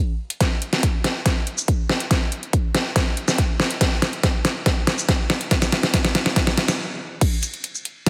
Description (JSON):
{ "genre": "dubstep", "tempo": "141 BPM", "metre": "4/4", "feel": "half-time", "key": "none", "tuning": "none", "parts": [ { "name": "dubstep drum kit", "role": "drums", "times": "0.3-8.1 s", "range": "crash cymbal, hi-hat, shaker, snare drum", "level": "-23 LUFS", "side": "equal", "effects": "none" }, { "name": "electronic kick drum", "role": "drums", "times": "0.4-7.3 s", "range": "none", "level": "-23 LUFS", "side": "equal", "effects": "none" } ], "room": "moderate plate reverb, RT60 1.7 s", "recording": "heavily compressed radio sound, multiband compression", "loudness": "-21 LUFS", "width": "mono", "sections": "0.0-7.2 A section", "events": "build-up 0.0-7.2; drum fill 0.4-6.8; stop 6.8-7.2", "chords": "none" }